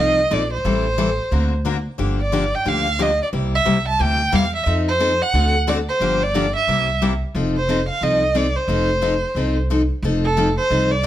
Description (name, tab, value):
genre	acoustic string swing (jazz manouche)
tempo	179 BPM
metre	4/4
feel	swing 61% on 8ths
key	F mixolydian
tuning	A4 = 438 Hz
part	warm violin	melody	0.0-11.1 s	A4 to A5	-20 LUFS	right 2 dB	plate reverb
part	picked steel-string acoustic guitar	accompaniment	0.0-11.1 s	C3 to A#4	-22 LUFS	left 3 dB	none
part	upright bass	bass	0.0-11.1 s	F1 to F2	-22 LUFS	equal	none
room	moderate studio reverb, RT60 0.7 s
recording	none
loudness	-17 LUFS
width	side -12 dB against mid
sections	0.0-7.3 A section; 7.3-11.1 A section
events	none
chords	0.0 F7; 0.6 Am7; 1.3 Daug7; 2.0 Gm7; 3.3 C7; 4.7 F7; 5.3 D7; 6.0 Gm7; 6.7 C7; 7.3 F7